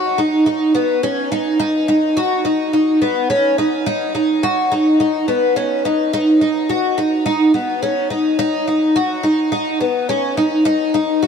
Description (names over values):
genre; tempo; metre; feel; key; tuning
dream pop; 106 BPM; 4/4; straight; unclear; A4 = 440 Hz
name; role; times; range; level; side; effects
picked twelve-string acoustic guitar; solo; 0.0-11.3 s; B3 to F#4; -14 LUFS; equal; wide subtle chorus, tape echo
room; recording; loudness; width
wet huge ambient reverb, RT60 6.1 s; none; -14 LUFS; side -6 dB against mid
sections
0.0-11.3 A section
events
none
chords
none